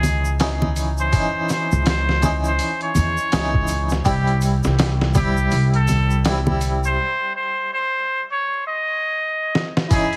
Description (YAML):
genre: trip hop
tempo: 82 BPM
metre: 4/4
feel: swing 60% on 16ths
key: unclear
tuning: A4 = 441 Hz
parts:
  - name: trumpet with straight mute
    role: melody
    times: 0.0-10.2 s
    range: G4 to D#5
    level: -25 LUFS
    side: equal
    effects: tape echo
  - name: harpsichord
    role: accompaniment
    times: 0.0-10.2 s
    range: E3 to E4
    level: -27 LUFS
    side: equal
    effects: tremolo, tape echo
  - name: upright bass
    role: bass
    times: 0.0-7.0 s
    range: C2 to E2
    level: -22 LUFS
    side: equal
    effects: none
  - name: trip hop sampler-style drum kit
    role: drums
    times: 0.0-10.2 s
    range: hi-hat, kick drum, snare drum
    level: -24 LUFS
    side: equal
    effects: none
  - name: congas and egg shaker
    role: percussion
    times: 0.0-10.1 s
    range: none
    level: -28 LUFS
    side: equal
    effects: none
  - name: clear studio violin section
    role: sustained chords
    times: 9.9-10.2 s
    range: E4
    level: -27 LUFS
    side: equal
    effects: none
room: light reverb, small room ambience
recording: heavily compressed radio sound, vinyl crackle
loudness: -20 LUFS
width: mono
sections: 0.0-9.9 A section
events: break 7.0-9.9; drum fill 9.5-9.9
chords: 0.0 C#madd9; 4.1 C